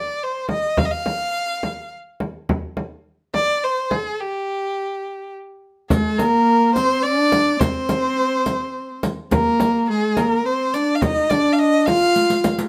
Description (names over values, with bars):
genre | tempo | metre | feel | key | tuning
Persian modal ensemble | 70 BPM (dotted quarters) | 6/8 | straight | unclear | A4 = 440 Hz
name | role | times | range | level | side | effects
rich violin | melody | 0.0-12.5 s | G4 to F5 | -23 LUFS | equal | none
frame drum | percussion | 0.5-12.6 s | none | -25 LUFS | equal | none
dark viola | second line | 5.9-12.5 s | Ab3+43c to F4 | -22 LUFS | equal | none
riq | percussion | 5.9-12.7 s | none | -31 LUFS | equal | none
room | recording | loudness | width
moderate studio reverb, RT60 0.6 s | close, detailed microphones | -20 LUFS | mono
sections
0.0-5.9 A section; 5.9-12.7 B section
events
stop 4.2-5.9; drum fill 12.2-12.7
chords
none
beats
| 0.78 1.64 | 2.49 3.35 | 4.20 5.05 | 5.91 6.76 | 7.61 8.47 | 9.32 10.17 | 11.02 11.88